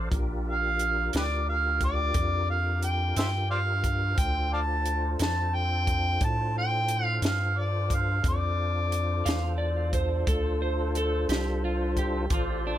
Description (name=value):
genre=slow blues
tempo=59 BPM (dotted quarters)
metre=12/8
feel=straight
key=D minor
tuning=A4 = 440 Hz
part: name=tonewheel organ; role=sustained chords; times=0.0-12.8 s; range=D4 to D5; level=-35 LUFS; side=left 2 dB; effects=slow rotary speaker, chorus vibrato
part: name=rubbery square bass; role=bass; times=0.0-12.8 s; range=A1 to A2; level=-29 LUFS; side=equal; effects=none
part: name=compact cocktail drum kit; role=drums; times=0.1-12.5 s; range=hi-hat, kick drum, snare drum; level=-30 LUFS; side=equal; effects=none
part: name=mellow harmonica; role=melody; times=0.5-9.6 s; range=G4 to A5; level=-28 LUFS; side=right 1 dB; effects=overdrive
part: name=electric slide guitar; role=second line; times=9.3-12.8 s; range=D4 to F5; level=-31 LUFS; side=right 3 dB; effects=analog delay
room=light reverb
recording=none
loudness=-25 LUFS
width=side -12 dB against mid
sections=0.0-12.8 A section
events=none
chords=0.1 Gm7; 4.2 Dm7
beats=| 0.12 1.13 2.15 3.16 | 4.18 5.19 6.21 7.22 | 8.24 9.26 10.27 11.29 | 12.30